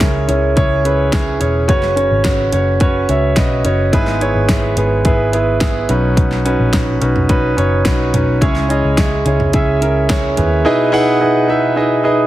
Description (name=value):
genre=piano-driven pop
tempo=107 BPM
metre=4/4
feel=straight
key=unclear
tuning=A4 = 440 Hz
part: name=clear concert grand piano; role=accompaniment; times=0.0-12.3 s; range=G#2 to F#5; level=-14 LUFS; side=right 1 dB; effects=none
part: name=vintage muted picked electric bass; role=bass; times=0.0-10.6 s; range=E1 to D#2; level=-18 LUFS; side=left 1 dB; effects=none
part: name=pop drum kit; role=drums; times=0.0-10.5 s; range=hi-hat, kick drum, snare drum, toms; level=-17 LUFS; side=equal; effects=none
room=moderate plate reverb, RT60 1.9 s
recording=heavily compressed radio sound, multiband compression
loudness=-12 LUFS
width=side -14 dB against mid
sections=0.0-10.7 A section; 10.7-12.3 B section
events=none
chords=0.0 C#m; 1.7 F#sus4; 3.9 E/G#; 5.9 Badd9; 8.4 C#m; 10.7 Emaj7